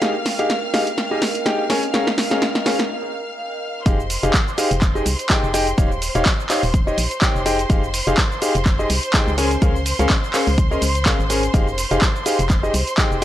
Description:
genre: piano house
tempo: 125 BPM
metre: 4/4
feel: swing 56% on 16ths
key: F minor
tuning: A4 = 441 Hz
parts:
  - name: warm symphonic violin section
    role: sustained chords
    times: 0.0-13.2 s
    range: C5 to F6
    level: -27 LUFS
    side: equal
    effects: sidechain pumping
  - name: clear grand piano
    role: riff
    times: 0.0-13.2 s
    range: Db4 to Ab5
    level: -22 LUFS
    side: left 1 dB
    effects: sidechain pumping, analog delay
  - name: organ-like FM bass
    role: bass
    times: 0.0-13.2 s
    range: Eb1 to Db2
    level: -23 LUFS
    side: equal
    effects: sidechain pumping, high-pass filter
  - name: punchy analog drum machine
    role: drums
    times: 0.0-13.2 s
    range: cabasa, handclaps, hi-hat, snare drum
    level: -22 LUFS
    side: right 1 dB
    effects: overdrive
  - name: deep dark ambient pad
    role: texture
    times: 0.0-2.9 s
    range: Bb4 to G5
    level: -30 LUFS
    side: right 4 dB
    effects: chorus, built-in reverb, sidechain pumping
  - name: electronic kick drum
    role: drums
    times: 3.9-13.1 s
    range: none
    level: -18 LUFS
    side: equal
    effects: none
room: little or no reverb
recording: dry, gritty hardware recording, transformer saturation, cassette tape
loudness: -16 LUFS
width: side -12 dB against mid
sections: 0.0-3.9 A section; 3.9-13.2 B section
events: build-up 0.0-3.9; drum fill 0.0-2.9; break 2.9-3.9; drop 3.9-13.2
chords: 0.0 Fm9; 1.7 Db6; 3.9 Fm9; 5.8 Eb9; 7.5 Fm9; 9.4 Db6; 11.5 Fm9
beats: | 0.02 0.50 0.98 1.46 | 1.94 2.42 2.90 3.38 | 3.86 4.34 4.82 5.30 | 5.78 6.26 6.74 7.22 | 7.70 8.18 8.66 9.14 | 9.62 10.10 10.58 11.06 | 11.54 12.02 12.50 12.98

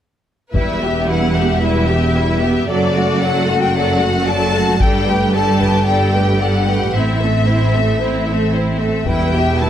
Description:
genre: cinematic, epic orchestral film score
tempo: 113 BPM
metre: 4/4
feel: straight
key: E minor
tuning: A4 = 436 Hz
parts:
  - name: rich symphonic violin section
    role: melody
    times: 0.5-9.7 s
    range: D5 to A5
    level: -21 LUFS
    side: left 4 dB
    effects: none
  - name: rich symphonic violin section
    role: second line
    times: 0.5-9.7 s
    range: E4 to G5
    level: -22 LUFS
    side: left 3 dB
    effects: none
  - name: rich studio cello section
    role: bass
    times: 0.5-9.7 s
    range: E2 to A2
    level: -19 LUFS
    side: right 2 dB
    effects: none
  - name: rich symphonic double bass section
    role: bass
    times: 0.5-9.7 s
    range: E1 to A1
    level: -20 LUFS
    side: right 2 dB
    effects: none
  - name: taiko ensemble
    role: drums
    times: 0.5-1.6, 4.8-5.9, 9.1-9.7 s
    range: none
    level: -21 LUFS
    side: left 1 dB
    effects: none
  - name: rich symphonic viola section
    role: accompaniment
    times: 0.6-9.7 s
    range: F#3 to A4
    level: -20 LUFS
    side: right 1 dB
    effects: none
room: moderate scoring stage reverb, RT60 1.8 s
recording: none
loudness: -13 LUFS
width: side -10 dB against mid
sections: 0.5-9.7 A section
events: none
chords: 0.5 Em; 2.7 D/F#; 4.8 Gadd9; 6.9 Am; 9.1 Em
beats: | 0.54 1.07 1.61 2.14 | 2.67 3.21 3.74 4.27 | 4.80 5.34 5.87 6.40 | 6.93 7.47 8.00 8.53 | 9.07 9.60

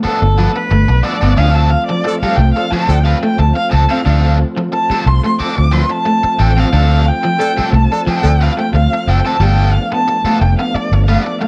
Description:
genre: funk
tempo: 90 BPM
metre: 4/4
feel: straight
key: D dorian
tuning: A4 = 440 Hz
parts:
  - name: dark erhu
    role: melody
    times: 0.0-11.5 s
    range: A4 to D6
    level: -20 LUFS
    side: equal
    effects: none
  - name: biting overdriven guitar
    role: accompaniment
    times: 0.0-11.4 s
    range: F3 to B4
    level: -25 LUFS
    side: equal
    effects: none
  - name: tonewheel organ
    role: sustained chords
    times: 0.0-11.5 s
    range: F3 to F4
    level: -25 LUFS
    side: equal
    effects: slow rotary speaker, overdrive, chorus vibrato
  - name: vintage muted fingered electric bass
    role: bass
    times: 0.0-11.2 s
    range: F1 to D2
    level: -14 LUFS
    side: equal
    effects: none
  - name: electric guitar at the edge of break-up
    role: riff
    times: 0.4-11.5 s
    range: F3 to D4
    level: -23 LUFS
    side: equal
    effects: lush chorus
  - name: clear horn section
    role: second line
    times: 2.0-3.0, 7.4-8.3 s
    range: F3 to A4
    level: -26 LUFS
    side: equal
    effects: analog delay
room: light reverb, small room ambience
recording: dark, warm production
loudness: -14 LUFS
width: mono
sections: 0.0-11.5 A section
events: erhu solo 0.0-11.5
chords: 0.0 G9; 1.4 Dm7; 9.4 G9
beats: 0.05 0.72 | 1.39 2.05 2.72 3.39 | 4.06 4.73 5.39 6.06 | 6.73 7.40 8.07 8.73 | 9.40 10.07 10.74 11.41

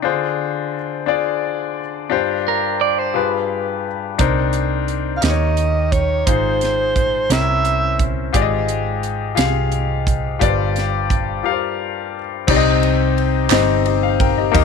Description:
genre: slow gospel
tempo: 58 BPM (dotted quarters)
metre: 6/8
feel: straight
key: C minor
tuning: A4 = 440 Hz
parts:
  - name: clear concert grand piano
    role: accompaniment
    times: 0.0-14.6 s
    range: G2 to G5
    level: -19 LUFS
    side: left 11 dB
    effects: none
  - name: clean electric guitar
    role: second line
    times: 2.5-3.3 s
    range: Bb4 to D5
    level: -20 LUFS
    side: right 14 dB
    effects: none
  - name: hollow-body short-scale fingered electric bass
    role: bass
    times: 4.2-14.6 s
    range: G1 to Eb2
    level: -20 LUFS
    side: right 3 dB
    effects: none
  - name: crisp fusion drum kit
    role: drums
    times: 4.2-14.6 s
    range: crash cymbal, hi-hat, kick drum, ride cymbal, snare drum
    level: -21 LUFS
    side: right 3 dB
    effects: none
  - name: mellow alto saxophone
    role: melody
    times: 5.2-8.1 s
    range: C5 to F5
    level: -19 LUFS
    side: right 3 dB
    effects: none
  - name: group handclap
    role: percussion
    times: 13.5-13.8 s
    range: none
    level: -22 LUFS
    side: right 18 dB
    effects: none
room: light reverb, small room ambience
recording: 1960s-style stereo with parts hard left and right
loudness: -16 LUFS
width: side -6 dB against mid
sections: 0.0-12.5 A section; 12.5-14.6 B section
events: break 11.4-12.5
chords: 0.0 Dm7b5; 2.1 G7sus4; 3.2 G7b9; 4.2 Cm9; 5.2 Eb7; 6.3 Ab6; 7.3 C7b9; 8.3 Fm9/Ab; 10.4 G7sus4; 12.5 Cm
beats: | 0.05 1.09 | 2.12 3.16 | 4.20 5.23 | 6.27 7.30 | 8.34 9.38 | 10.41 11.45 | 12.48 13.51 | 14.55

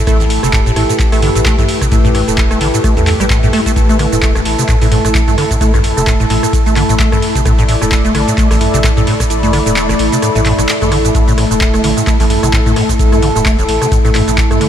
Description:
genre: acid house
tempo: 130 BPM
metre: 4/4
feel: swing 56% on 16ths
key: unclear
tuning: A4 = 438 Hz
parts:
  - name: warm analog pad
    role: sustained chords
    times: 0.0-14.7 s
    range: A3 to D5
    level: -19 LUFS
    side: left 2 dB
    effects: chorus, sidechain pumping
  - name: acid bass, square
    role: riff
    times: 0.0-14.7 s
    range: A1 to A3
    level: -17 LUFS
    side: equal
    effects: tube saturation, wide subtle chorus, cassette tape, ping-pong delay
  - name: warbly tape-like pad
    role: texture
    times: 0.0-14.7 s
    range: E4 to B5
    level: -22 LUFS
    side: equal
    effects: chorus, built-in reverb, tremolo, sidechain pumping
  - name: deep mellow chord stab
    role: stabs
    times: 0.1-14.6 s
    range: A3 to A4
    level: -19 LUFS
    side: right 3 dB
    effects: chorus, ping-pong delay
  - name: warm sub bass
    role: bass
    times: 0.1-14.6 s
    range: E1 to E2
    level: -18 LUFS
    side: equal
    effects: tube saturation, sidechain pumping
  - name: booming analog drum machine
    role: drums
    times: 0.1-14.7 s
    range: cabasa, handclaps, hi-hat, rim click, toms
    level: -18 LUFS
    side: right 1 dB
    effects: studio reverb
  - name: electronic kick drum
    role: drums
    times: 0.1-14.5 s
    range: none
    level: -14 LUFS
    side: equal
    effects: studio reverb
room: light reverb, digital ambience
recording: none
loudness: -9 LUFS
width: side -10 dB against mid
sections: 0.0-14.7 A section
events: kick drops out 9.3-11.1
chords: 0.0 A5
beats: | 0.07 0.53 0.99 1.46 | 1.92 2.38 2.84 3.30 | 3.76 4.22 4.69 5.15 | 5.61 6.07 6.53 6.99 | 7.46 7.92 8.38 8.84 | 9.30 9.76 10.22 10.69 | 11.15 11.61 12.07 12.53 | 12.99 13.46 13.92 14.38

